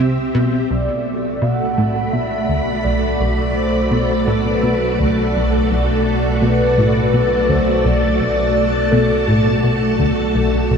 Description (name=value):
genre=ambient, sequencer-driven space music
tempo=84 BPM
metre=4/4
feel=straight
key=B phrygian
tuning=A4 = 440 Hz
part: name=string machine, full ensemble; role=sustained chords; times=0.0-10.8 s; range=A3 to B5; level=-18 LUFS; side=equal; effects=ensemble chorus
part: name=plucky analog bass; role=riff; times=0.0-10.8 s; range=B1 to C3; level=-20 LUFS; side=equal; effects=lush chorus, analog delay
part: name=fat analog bass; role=bass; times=0.0-10.8 s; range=B1 to C2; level=-23 LUFS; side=equal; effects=none
part: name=mellow horn-like synth lead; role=melody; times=0.7-9.6 s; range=A4 to F#5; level=-22 LUFS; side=equal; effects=chorus, analog delay
room=wet cathedral reverb, RT60 5.6 s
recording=in a vast, echoing space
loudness=-14 LUFS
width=side -6 dB against mid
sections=0.0-10.8 A section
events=none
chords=0.0 C; 0.7 Bm7